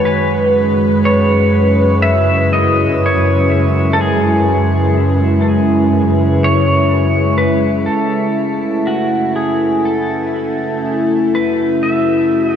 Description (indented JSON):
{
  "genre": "ambient",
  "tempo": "61 BPM",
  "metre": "4/4",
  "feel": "straight",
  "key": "F# minor",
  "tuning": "A4 = 441 Hz",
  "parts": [
    { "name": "pedal steel guitar", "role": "melody", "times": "0.0-12.6 s", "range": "F#4 to E5", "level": "-18 LUFS", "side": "equal", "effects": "lush chorus, shimmer reverb, tape echo" },
    { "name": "evolving wavetable pad", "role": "sustained chords", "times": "0.0-12.6 s", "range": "C#3 to B4", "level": "-14 LUFS", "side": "equal", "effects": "chorus, built-in reverb, shimmer reverb" },
    { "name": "rich symphonic double bass section", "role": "bass", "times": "0.0-12.6 s", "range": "F#2", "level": "-18 LUFS", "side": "equal", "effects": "none" },
    { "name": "vibraphone with medium mallets", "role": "arpeggios", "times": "9.4-12.6 s", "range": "none", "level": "barely audible", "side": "none", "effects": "none" }
  ],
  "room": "wet cathedral reverb, RT60 5.3 s",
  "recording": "dreamy mix soaked in reverb",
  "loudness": "-12 LUFS",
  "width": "side -8 dB against mid",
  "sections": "0.0-7.9 A section; 7.9-12.6 B section",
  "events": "none",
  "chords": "0.1 C#m7/F#; 7.9 F#m7"
}